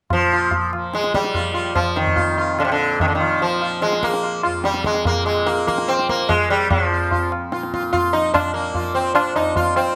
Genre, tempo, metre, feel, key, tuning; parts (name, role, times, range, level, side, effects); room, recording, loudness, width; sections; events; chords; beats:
indian classical, Hindustani; 146 BPM; 4/4; straight; F raga bageshri; A4 = 439 Hz
sitar; melody; 0.1-10.0 s; C3 to F4; -21 LUFS; equal; plate reverb
tanpura; drone; 0.1-10.0 s; F2 to F3; -31 LUFS; equal
tabla; percussion; 0.1-9.9 s; -26 LUFS; equal
moderate studio reverb, RT60 0.5 s; -19 LUFS; mono
0.1-10.0 A section
| 0.10 0.52 0.93 1.35 | 1.76 2.17 2.59 3.00 | 3.41 3.82 4.24 4.65 | 5.06 5.47 5.88 6.29 | 6.70 7.11 7.52 7.93 | 8.34 8.75 9.15 9.56